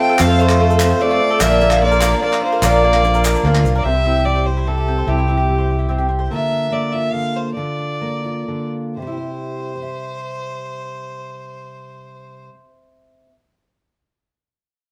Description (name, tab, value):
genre	indie folk with a building arrangement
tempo	116-148 BPM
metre	3/4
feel	straight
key	C mixolydian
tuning	A4 = 438 Hz
part	warm fiddle	melody	0.0-12.5 s	G4 to G5	-24 LUFS	equal	none
part	picked twelve-string acoustic guitar	accompaniment	0.0-3.9 s	Bb2 to Bb4	-22 LUFS	equal	none
part	pedal harmonium	sustained chords	0.0-3.8 s	A3 to F4	-27 LUFS	equal	none
part	mandolin	arpeggios	0.0-6.3 s	A3 to C5	-22 LUFS	equal	none
part	fingered electric bass	bass	0.2-6.3 s	Bb1 to F2	-20 LUFS	equal	none
part	group handclap	percussion	0.2-3.6 s	none	-27 LUFS	equal	none
part	tube shaker	percussion	0.2-3.7 s	none	-33 LUFS	equal	none
part	fingerpicked steel-string acoustic guitar	accompaniment	3.8-13.3 s	C3 to E5	-28 LUFS	equal	none
room	moderate stone room reverb, RT60 1.1 s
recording	band playing live in one room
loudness	-17 LUFS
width	mono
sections	0.0-3.8 A section; 3.8-9.0 B section; 9.0-12.1 C section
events	slowing down 6.3-9.0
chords	0.0 F; 1.4 Bb; 3.8 C; 6.3 Bb/D; 9.0 C